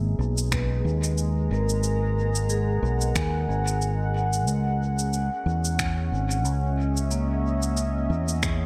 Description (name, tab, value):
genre	ambient dub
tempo	91 BPM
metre	4/4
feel	swing 57% on 16ths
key	G# minor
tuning	A4 = 438 Hz
part	deep dark ambient pad	sustained chords	0.0-8.7 s	G#3 to A#5	-35 LUFS	equal	chorus, built-in reverb
part	vibraphone with medium hard mallets	arpeggios	0.0-8.7 s	A#3 to G#5	-33 LUFS	equal	tape echo
part	fingered electric bass	bass	0.0-8.7 s	G#1 to E2	-27 LUFS	equal	none
part	electronic cabasa and finger snaps	drums	0.4-8.6 s	none	-33 LUFS	equal	dub echo
part	electronic kick drum	drums	0.5-8.6 s	none	-33 LUFS	equal	none
room	light reverb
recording	none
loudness	-25 LUFS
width	mono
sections	0.0-8.7 A section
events	none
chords	0.0 G#m7; 4.5 C#m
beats	0.52 1.18 | 1.84 2.50 3.16 3.81 | 4.47 5.13 5.79 6.45 | 7.11 7.77 8.43